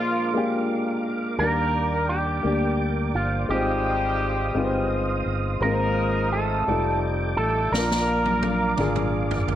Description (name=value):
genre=slow gospel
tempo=57 BPM (dotted quarters)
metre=6/8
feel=straight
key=Eb major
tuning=A4 = 440 Hz
part: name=electric guitar with an envelope filter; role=melody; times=0.0-9.1 s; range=F4 to Bb4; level=-28 LUFS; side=right 3 dB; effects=slapback echo
part: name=mellow horn section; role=melody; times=0.0-9.1 s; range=F3 to Bb4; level=-28 LUFS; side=left 1 dB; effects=none
part: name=warm grand piano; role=accompaniment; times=0.0-9.6 s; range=Ab2 to D5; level=-26 LUFS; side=left 2 dB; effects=none
part: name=tonewheel organ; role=sustained chords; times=0.0-9.6 s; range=Eb4 to Eb6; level=-32 LUFS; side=right 3 dB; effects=slow rotary speaker, overdrive, chorus vibrato
part: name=fingered electric bass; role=bass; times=1.4-9.6 s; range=F1 to Eb2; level=-27 LUFS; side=right 1 dB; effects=none
part: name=swinging big-band drum kit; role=drums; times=7.7-9.6 s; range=snare drum, toms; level=-27 LUFS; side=equal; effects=none
room=light reverb, small room ambience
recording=none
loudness=-21 LUFS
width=side -11 dB against mid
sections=0.0-9.6 A section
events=drum fill 7.7-9.6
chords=0.0 Bb7; 1.4 Ebmaj7; 3.5 Ab6; 5.6 Fm7/Ab; 6.7 F13; 7.7 Bb